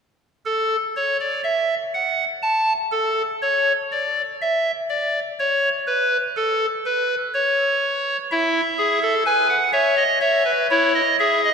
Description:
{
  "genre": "classical, baroque-style 3-part fugue for pipe organ",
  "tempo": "62 BPM",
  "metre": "4/4",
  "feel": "straight",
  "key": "A major",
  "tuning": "A4 = 440 Hz",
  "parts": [
    { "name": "chamber organ, clarinet reed", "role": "solo", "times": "0.5-11.5 s", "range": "E4 to A5", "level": "-18 LUFS", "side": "equal", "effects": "none" }
  ],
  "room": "wet church reverb, RT60 3.4 s",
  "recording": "minimal, uncompressed stereo recording",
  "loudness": "-18 LUFS",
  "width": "side -6 dB against mid",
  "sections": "0.5-11.5 A section",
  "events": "none",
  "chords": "0.5 N.C.; 8.3 E; 10.2 A (rootless)",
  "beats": "| 0.46 1.45 2.43 3.42 | 4.40 5.38 6.36 7.33 | 8.30 9.27 10.24 11.21"
}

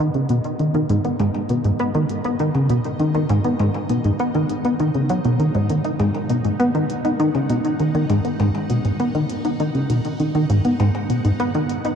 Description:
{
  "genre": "ambient, sequencer-driven space music",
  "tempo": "100 BPM",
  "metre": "4/4",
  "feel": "straight",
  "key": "G# minor",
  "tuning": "A4 = 440 Hz",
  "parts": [
    { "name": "plucky analog bass", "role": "riff", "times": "0.0-11.9 s", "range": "G#2 to D#4", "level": "-18 LUFS", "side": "equal", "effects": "wide subtle chorus, tape echo" },
    { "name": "bubbling stepped-filter texture", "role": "texture", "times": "0.0-12.0 s", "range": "D#4 to F#5", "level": "-39 LUFS", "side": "equal", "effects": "chorus, built-in reverb" },
    { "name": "electronic hi-hat and percussion blips", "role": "percussion", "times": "0.1-12.0 s", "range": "none", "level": "-40 LUFS", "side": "left 3 dB", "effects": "tape echo" }
  ],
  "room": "wet huge ambient reverb, RT60 8.4 s",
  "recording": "dark, warm production",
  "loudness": "-18 LUFS",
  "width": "side -7 dB against mid",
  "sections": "0.0-12.0 A section",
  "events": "fade-in on synth texture 0.0-12.0; fade-in on drum 0.0-12.0",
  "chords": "0.0 G#m",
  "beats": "0.00 0.60 | 1.20 1.80 2.40 3.00 | 3.60 4.20 4.80 5.40 | 6.00 6.60 7.20 7.80 | 8.40 9.00 9.60 10.20 | 10.80 11.40"
}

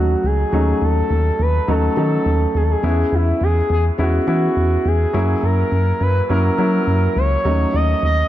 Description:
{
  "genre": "1980s-style pop",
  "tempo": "104 BPM",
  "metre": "4/4",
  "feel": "straight",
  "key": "unclear",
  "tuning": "A4 = 441 Hz",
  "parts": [
    { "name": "expressive portamento lead", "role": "melody", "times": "0.0-8.3 s", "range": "E4 to D#5", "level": "-21 LUFS", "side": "equal", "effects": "chorus, digital delay" },
    { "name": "clear concert grand piano", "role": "accompaniment", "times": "0.0-8.3 s", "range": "F#3 to E4", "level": "-21 LUFS", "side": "equal", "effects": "none" },
    { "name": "solid FM bass", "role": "bass", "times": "0.0-8.2 s", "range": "C#2 to F#3", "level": "-18 LUFS", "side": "equal", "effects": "none" }
  ],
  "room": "light reverb",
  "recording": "dark, warm production",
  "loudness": "-15 LUFS",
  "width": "side -13 dB against mid",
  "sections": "0.0-8.3 A section",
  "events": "none",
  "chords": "0.0 D#m7b5; 2.8 C#m7/E; 5.1 F#7; 7.5 D#m7b5",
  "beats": "| 0.53 1.11 1.68 2.26 | 2.84 3.41 3.99 4.57 | 5.14 5.72 6.30 6.88 | 7.45 8.03"
}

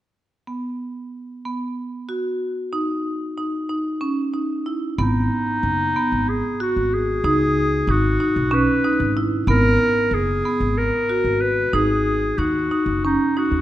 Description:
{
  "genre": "contemporary instrumental, contemporary",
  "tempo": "186 BPM (eighths)",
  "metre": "7/8",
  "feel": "straight",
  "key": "G# minor",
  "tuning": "A4 = 440 Hz",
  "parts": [
    { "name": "marimba with medium hard mallets", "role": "arpeggios", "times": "0.5-13.6 s", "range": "B3 to F#4", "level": "-22 LUFS", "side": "right 1 dB", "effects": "none" },
    { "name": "clear clarinet", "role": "melody", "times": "5.0-13.6 s", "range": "D#4 to B4", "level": "-22 LUFS", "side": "left 1 dB", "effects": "none" },
    { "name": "upright bass", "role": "bass", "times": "5.0-13.6 s", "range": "F#1 to D#2", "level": "-23 LUFS", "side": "equal", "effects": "none" }
  ],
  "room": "moderate scoring stage reverb, RT60 1.6 s",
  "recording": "none",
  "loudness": "-18 LUFS",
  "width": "side -13 dB against mid",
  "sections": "0.5-5.0 A section; 5.0-13.6 B section",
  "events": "none",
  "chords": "0.5 B5; 2.7 N.C.; 5.0 G#m7; 7.2 C#7sus2; 9.5 G#m7; 11.7 G#5",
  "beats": "| 0.48 0.80 1.13 1.45 1.77 2.09 2.41 | 2.73 3.05 3.37 3.69 4.01 4.33 4.65 | 4.98 5.31 5.63 5.96 6.28 6.60 6.92 | 7.25 7.57 7.89 8.20 8.52 8.84 9.17 | 9.48 9.80 10.12 10.44 10.76 11.09 11.41 | 11.73 12.05 12.38 12.70 13.03 13.35"
}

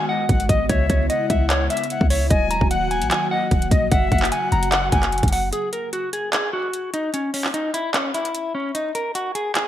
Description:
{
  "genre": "hip hop, trap",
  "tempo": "149 BPM",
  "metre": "4/4",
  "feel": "half-time",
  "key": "unclear",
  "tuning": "A4 = 440 Hz",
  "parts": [
    { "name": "clean electric guitar", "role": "melody", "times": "0.0-9.7 s", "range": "C#4 to A#5", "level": "-23 LUFS", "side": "equal", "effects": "low-pass filter" },
    { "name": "bright silver concert flute", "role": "second line", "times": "0.0-5.5 s", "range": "D#5 to G#5", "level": "-28 LUFS", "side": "left 5 dB", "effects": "ping-pong delay" },
    { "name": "airy breathy pad", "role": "sustained chords", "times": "0.0-5.5 s", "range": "C#3 to F#4", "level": "-28 LUFS", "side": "equal", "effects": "chorus" },
    { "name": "clean 808-style bass", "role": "bass", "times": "0.3-5.5 s", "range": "D#1 to C#2", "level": "-22 LUFS", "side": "equal", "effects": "none" },
    { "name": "trap drum kit", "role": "drums", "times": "0.3-9.7 s", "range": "handclaps, hi-hat, kick drum", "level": "-22 LUFS", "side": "equal", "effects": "gated reverb" }
  ],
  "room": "moderate plate reverb, RT60 1.3 s, digital ambience",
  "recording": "bright 1980s-style digital production, vinyl crackle",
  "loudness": "-18 LUFS",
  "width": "side -12 dB against mid",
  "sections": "0.0-5.5 A section; 5.5-9.7 B section",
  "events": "break 5.5-9.7",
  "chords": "0.0 G#m7; 0.7 C#m7; 2.3 D#m; 3.9 F#; 5.5 N.C.",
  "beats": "0.29 | 0.69 1.10 1.50 1.90 | 2.31 2.71 3.11 3.51 | 3.92 4.32 4.72 5.12 | 5.53 5.93 6.33 6.74 | 7.14 7.54 7.94 8.35 | 8.75 9.15 9.55"
}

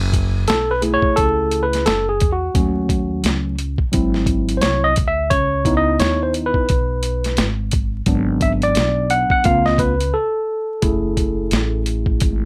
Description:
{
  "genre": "hip hop, jazz-hop",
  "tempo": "87 BPM",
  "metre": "4/4",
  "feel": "swing 60% on 16ths",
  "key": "F# dorian",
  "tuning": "A4 = 440 Hz",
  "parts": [
    { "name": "upright bass", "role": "bass", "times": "0.0-12.5 s", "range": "F#1 to E2", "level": "-24 LUFS", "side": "equal", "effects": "none" },
    { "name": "boom bap sampler-style drum kit", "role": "drums", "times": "0.1-12.4 s", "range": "hi-hat, kick drum, snare drum", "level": "-23 LUFS", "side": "equal", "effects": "none" },
    { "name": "barky tine electric piano", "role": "accompaniment", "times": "0.5-12.5 s", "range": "F#3 to F#5", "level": "-21 LUFS", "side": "equal", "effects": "none" }
  ],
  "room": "light reverb",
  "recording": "vinyl crackle",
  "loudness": "-18 LUFS",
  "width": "mono",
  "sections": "0.0-12.5 A section",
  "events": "tine electric piano solo 0.0-12.5; break 10.1-10.8",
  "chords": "0.0 F#m9; 2.5 D#m7b5; 3.9 G#7b13; 5.3 C#m9; 8.1 G#m7b5; 9.4 C#7b13; 10.8 F#m9",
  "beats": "0.48 1.17 1.86 | 2.55 3.24 3.93 4.62 | 5.31 6.00 6.69 7.38 | 8.07 8.76 9.45 10.13 | 10.82 11.51 12.20"
}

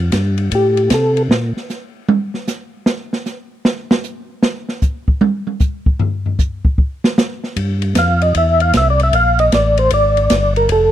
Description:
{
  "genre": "soul jazz organ trio",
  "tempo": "153 BPM",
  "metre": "4/4",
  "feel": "swing 66% on 8ths",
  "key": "unclear",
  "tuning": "A4 = 439 Hz",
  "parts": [
    { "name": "tonewheel organ", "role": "bass", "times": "0.0-1.5, 7.6-10.9 s", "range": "F1 to C3", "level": "-16 LUFS", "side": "equal", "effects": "overdrive, chorus vibrato, slow rotary speaker" },
    { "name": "open jazz drum kit", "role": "drums", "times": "0.1-10.8 s", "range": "hi-hat, kick drum, ride cymbal, snare drum, toms", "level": "-17 LUFS", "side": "right 1 dB", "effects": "none" },
    { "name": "percussive tonewheel organ", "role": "melody", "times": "0.5-1.2, 8.0-10.9 s", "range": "G4 to F5", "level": "-14 LUFS", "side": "equal", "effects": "slow rotary speaker, chorus vibrato" }
  ],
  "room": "small room ambience",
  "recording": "dry, close 1970s-style studio recording",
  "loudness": "-13 LUFS",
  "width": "side -12 dB against mid",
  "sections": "0.0-10.9 A section",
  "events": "tonewheel organ solo 0.0-10.9; drum solo 1.3-7.6",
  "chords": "0.0 Fadd9; 1.3 N.C.; 7.6 C; 9.1 Bb7",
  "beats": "0.12 0.51 0.90 | 1.29 1.69 2.08 2.47 | 2.86 3.25 3.65 4.04 | 4.43 4.82 5.21 5.60 | 6.00 6.39 6.78 7.17 | 7.56 7.95 8.35 8.74 | 9.13 9.52 9.91 10.30 | 10.70"
}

